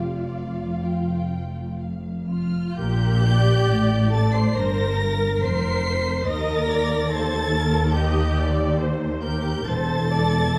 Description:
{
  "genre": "classical, slow romantic movement for string orchestra",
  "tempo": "59-73 BPM",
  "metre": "4/4",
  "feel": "rubato",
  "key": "Bb major",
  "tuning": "A4 = 439 Hz",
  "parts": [
    { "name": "warm symphonic violin section", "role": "melody", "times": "0.0-10.6 s", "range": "D5 to C7", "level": "-34 LUFS", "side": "equal", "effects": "none" },
    { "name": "warm symphonic violin section", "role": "second line", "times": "0.0-10.6 s", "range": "F4 to F5", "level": "-30 LUFS", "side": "equal", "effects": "none" },
    { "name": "warm symphonic viola section", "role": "accompaniment", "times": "0.0-10.6 s", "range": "F4 to E5", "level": "-32 LUFS", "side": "equal", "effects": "none" },
    { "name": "dark symphonic double bass section", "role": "bass", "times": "0.0-10.6 s", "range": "E1 to Eb2", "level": "-27 LUFS", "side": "equal", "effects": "none" },
    { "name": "warm symphonic cello section", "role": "bass", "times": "0.0-10.6 s", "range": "Eb2 to Bb2", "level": "-27 LUFS", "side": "equal", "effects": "none" }
  ],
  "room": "wet recital hall reverb, RT60 1.6 s",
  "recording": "dark, warm production",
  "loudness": "-22 LUFS",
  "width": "mono",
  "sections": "0.0-2.8 A section; 2.8-10.6 B section",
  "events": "none",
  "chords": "0.0 Dm/F; 2.8 Bb; 4.6 Gm; 6.3 Eb; 9.7 Bbmaj9#11/E (rootless)",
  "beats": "0.83 1.80 | 2.78 3.69 4.56 5.42 | 6.27 7.10 7.94 8.80 | 9.67 10.55"
}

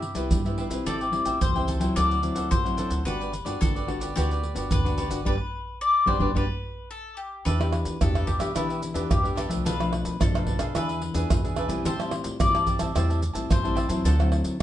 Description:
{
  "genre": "samba and choro",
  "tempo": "109 BPM",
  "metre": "4/4",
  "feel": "straight",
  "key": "G major, E minor from 7.5 s",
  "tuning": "A4 = 439 Hz",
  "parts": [
    { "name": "bowl-back mandolin", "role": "second line", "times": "0.0-14.6 s", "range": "E4 to D5", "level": "-29 LUFS", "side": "left 4 dB", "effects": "none" },
    { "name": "cavaquinho", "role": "accompaniment", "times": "0.0-14.3 s", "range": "D4 to A5", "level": "-34 LUFS", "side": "right 4 dB", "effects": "none" },
    { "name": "nylon-string guitar", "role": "accompaniment", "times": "0.0-14.6 s", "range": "G2 to G#4", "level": "-30 LUFS", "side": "left 3 dB", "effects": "none" },
    { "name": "upright bass", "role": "bass", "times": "0.0-14.6 s", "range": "G1 to E3", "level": "-29 LUFS", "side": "equal", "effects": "none" },
    { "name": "pandeiro, maracas, surdo and tamborim", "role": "percussion", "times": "0.0-14.6 s", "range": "none", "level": "-27 LUFS", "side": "right 1 dB", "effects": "none" }
  ],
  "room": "moderate studio reverb, RT60 0.7 s",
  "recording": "band playing live in one room, nothing above 10.5 kHz",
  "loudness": "-23 LUFS",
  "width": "side -12 dB against mid",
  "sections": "0.0-7.5 A section; 7.5-14.6 B section",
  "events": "band accent 5.3-7.5",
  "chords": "0.0 Cmaj7; 0.9 Am7; 2.0 D9; 3.1 Gmaj7; 7.5 Em7; 9.7 Bm7b5; 10.8 E7; 11.9 Am7; 14.1 D9",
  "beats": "0.31 | 0.86 1.41 1.96 2.51 | 3.06 3.61 4.16 4.71 | 5.26 5.81 6.36 6.91 | 7.46 8.01 8.56 9.11 | 9.66 10.21 10.76 11.31 | 11.86 12.40 12.95 13.50 | 14.05 14.60"
}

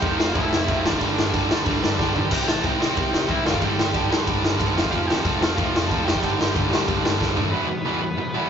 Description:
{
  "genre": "punk rock",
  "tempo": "184 BPM",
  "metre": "4/4",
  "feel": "straight",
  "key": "G mixolydian",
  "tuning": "A4 = 440 Hz",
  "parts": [
    { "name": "cranked stack guitar", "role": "melody", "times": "0.0-8.5 s", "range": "B3 to A5", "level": "-29 LUFS", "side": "equal", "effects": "overdrive" },
    { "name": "sludgy distorted guitar", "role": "riff", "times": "0.0-8.5 s", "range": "F2 to E4", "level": "-27 LUFS", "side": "left 7 dB", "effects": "overdrive" },
    { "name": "tight distorted guitar", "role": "riff", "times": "0.0-8.5 s", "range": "E2 to C4", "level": "-25 LUFS", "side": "right 6 dB", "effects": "distortion" },
    { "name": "overdriven picked electric bass", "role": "bass", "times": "0.0-7.5 s", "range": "F1 to D2", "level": "-30 LUFS", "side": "equal", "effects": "none" },
    { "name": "raw garage drum kit", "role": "drums", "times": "0.0-7.4 s", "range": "crash cymbal, kick drum, ride cymbal, snare drum, toms", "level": "-23 LUFS", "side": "left 1 dB", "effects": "none" }
  ],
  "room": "moderate booth ambience, RT60 0.2 s",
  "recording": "rough rehearsal-room recording, tube saturation, nothing above 7.6 kHz",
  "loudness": "-19 LUFS",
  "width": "side -7 dB against mid",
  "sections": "0.0-7.5 A section",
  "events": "drum fill 2.0-2.3, 7.2-7.5",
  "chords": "0.0 F; 1.0 G; 2.3 C; 3.5 G; 4.8 F; 6.2 G; 7.5 Em",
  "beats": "0.02 0.35 0.68 | 1.00 1.33 1.66 1.99 | 2.31 2.64 2.97 3.29 | 3.62 3.94 4.27 4.60 | 4.92 5.25 5.57 5.90 | 6.22 6.55 6.87 7.20 | 7.52 7.85 8.17"
}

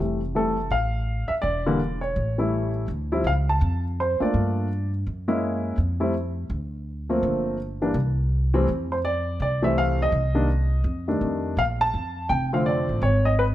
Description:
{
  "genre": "jazz piano trio",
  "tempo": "166 BPM",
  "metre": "4/4",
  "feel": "swing 63% on 8ths",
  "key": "F major",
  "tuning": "A4 = 441 Hz",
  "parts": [
    { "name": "dark baby grand piano", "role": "melody", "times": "0.0-13.4 s", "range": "C3 to A5", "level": "-24 LUFS", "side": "equal", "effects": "none" },
    { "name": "upright bass", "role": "bass", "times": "0.0-13.5 s", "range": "E1 to G2", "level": "-25 LUFS", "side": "equal", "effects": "none" }
  ],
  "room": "light reverb",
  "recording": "close, detailed microphones",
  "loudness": "-22 LUFS",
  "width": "side -13 dB against mid",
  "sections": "0.0-11.6 A section; 11.6-13.5 B section",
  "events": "none",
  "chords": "0.0 Fmaj7; 1.4 E7(no3); 2.2 A7; 2.9 Dm7; 4.3 Gm7; 5.1 Gb9; 5.8 N.C.; 7.2 Gm7; 8.0 N.C.; 8.7 Fmaj7; 10.1 Cm; 10.8 F13; 11.6 Bbmaj7; 13.0 Absus4",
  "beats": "0.35 0.71 1.07 | 1.44 1.80 2.16 2.52 | 2.88 3.25 3.61 3.97 | 4.33 4.70 5.06 5.42 | 5.78 6.14 6.51 6.87 | 7.23 7.59 7.95 8.32 | 8.68 9.04 9.40 9.76 | 10.13 10.49 10.85 11.21 | 11.57 11.93 12.29 12.66 | 13.02 13.38"
}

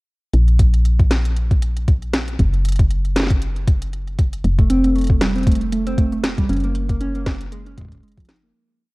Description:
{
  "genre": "IDM",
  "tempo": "117 BPM",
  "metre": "4/4",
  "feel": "swing 56% on 16ths",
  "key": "unclear",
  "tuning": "A4 = 440 Hz",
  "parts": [
    { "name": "woody FM bass", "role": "bass", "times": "0.3-8.5 s", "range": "F1 to Bb1", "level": "-19 LUFS", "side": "equal", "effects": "none" },
    { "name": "organic electronic drum kit", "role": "drums", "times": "0.3-8.5 s", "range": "hi-hat, snare drum", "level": "-24 LUFS", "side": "equal", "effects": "ping-pong delay" },
    { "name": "electronic kick drum", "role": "drums", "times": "0.6-8.3 s", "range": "none", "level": "-16 LUFS", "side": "equal", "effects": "none" },
    { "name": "harp-like synth pluck", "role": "arpeggios", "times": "4.6-8.5 s", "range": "F3 to Eb4", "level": "-21 LUFS", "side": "right 1 dB", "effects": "chorus, ping-pong delay" }
  ],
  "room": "little or no reverb",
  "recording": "worn, warbling old tape, cassette tape, warbly pitch drift",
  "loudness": "-16 LUFS",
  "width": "side -23 dB against mid",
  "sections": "0.3-8.5 groove",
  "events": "fade-out 5.8-8.5",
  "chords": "0.3 N.C.; 4.4 F; 6.5 Ebm/Gb (rootless)",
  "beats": "| 0.34 0.85 1.37 1.88 | 2.39 2.90 3.42 3.93 | 4.44 4.96 5.47 5.98 | 6.49 7.01 7.52 8.03"
}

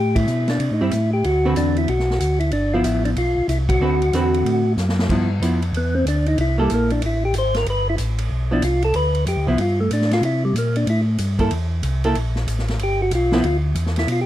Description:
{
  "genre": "soul jazz organ trio",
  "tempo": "187 BPM",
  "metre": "4/4",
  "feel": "swing 64% on 8ths",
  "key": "unclear",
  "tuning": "A4 = 440 Hz",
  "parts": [
    { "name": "percussive tonewheel organ", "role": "melody", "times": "0.0-14.3 s", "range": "G3 to C5", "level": "-21 LUFS", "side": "left 1 dB", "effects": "slow rotary speaker, plate reverb" },
    { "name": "mellow tonewheel organ", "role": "bass", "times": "0.0-14.3 s", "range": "G1 to C3", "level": "-20 LUFS", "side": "equal", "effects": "slow rotary speaker" },
    { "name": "swinging big-band drum kit", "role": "drums", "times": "0.2-14.2 s", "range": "crash cymbal, hi-hat, kick drum, ride cymbal, snare drum", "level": "-29 LUFS", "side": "equal", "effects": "none" },
    { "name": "archtop guitar, miked and amplified", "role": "accompaniment", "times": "0.8-13.4 s", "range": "D3 to B4", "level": "-22 LUFS", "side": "right 1 dB", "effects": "none" }
  ],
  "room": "light reverb",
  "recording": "dark, warm production",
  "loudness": "-17 LUFS",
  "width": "side -13 dB against mid",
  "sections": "0.0-5.1 A section; 5.1-14.3 B section",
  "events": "band accent 0.1, 3.6; drum fill 4.8-5.1; tonewheel organ solo 5.1-14.3",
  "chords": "0.0 Am7; 1.2 D13; 2.5 G13; 3.2 Cmaj7#11/B; 3.8 D13; 5.1 G6; 6.4 C6; 7.7 G9; 8.9 Dm7; 9.6 Gsus2; 10.2 C6; 12.8 G6",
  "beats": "0.28 0.60 0.92 | 1.24 1.56 1.88 2.20 | 2.52 2.84 3.16 3.48 | 3.81 4.13 4.45 4.77 | 5.09 5.41 5.73 6.05 | 6.38 6.70 7.02 7.34 | 7.66 7.98 8.30 8.62 | 8.94 9.26 9.59 9.91 | 10.23 10.55 10.87 11.19 | 11.51 11.83 12.15 12.47 | 12.79 13.12 13.44 13.76 | 14.08"
}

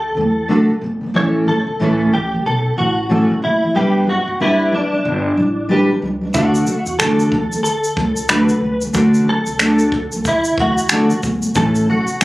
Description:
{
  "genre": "acoustic pop",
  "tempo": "92 BPM",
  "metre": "4/4",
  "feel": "swing 60% on 16ths",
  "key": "D major",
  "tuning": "A4 = 440 Hz",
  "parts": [
    { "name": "direct-recorded clean electric guitar", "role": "melody", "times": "0.0-12.2 s", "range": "D4 to C#5", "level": "-19 LUFS", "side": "equal", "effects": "ensemble chorus, digital delay" },
    { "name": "upright bass", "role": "bass", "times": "0.0-12.2 s", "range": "F#1 to E2", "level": "-25 LUFS", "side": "equal", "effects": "none" },
    { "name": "fingerpicked steel-string acoustic guitar", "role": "accompaniment", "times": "0.1-12.2 s", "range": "A2 to B4", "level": "-16 LUFS", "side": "equal", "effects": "double-tracked left and right" },
    { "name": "compact cocktail drum kit", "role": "drums", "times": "6.3-12.2 s", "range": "finger snaps, kick drum, shaker", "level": "-21 LUFS", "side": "equal", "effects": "none" }
  ],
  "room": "wet studio reverb, RT60 0.5 s",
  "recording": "recorded on a phone in the room, club reverb",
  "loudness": "-14 LUFS",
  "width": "side -18 dB against mid",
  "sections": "0.0-12.2 A section",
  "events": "none",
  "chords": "0.0 D; 1.1 A; 3.7 G; 6.3 D; 11.6 A",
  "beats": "0.49 | 1.14 1.79 2.45 3.10 | 3.75 4.40 5.05 5.70 | 6.35 7.00 7.65 8.30 | 8.95 9.60 10.25 10.90 | 11.55 12.21"
}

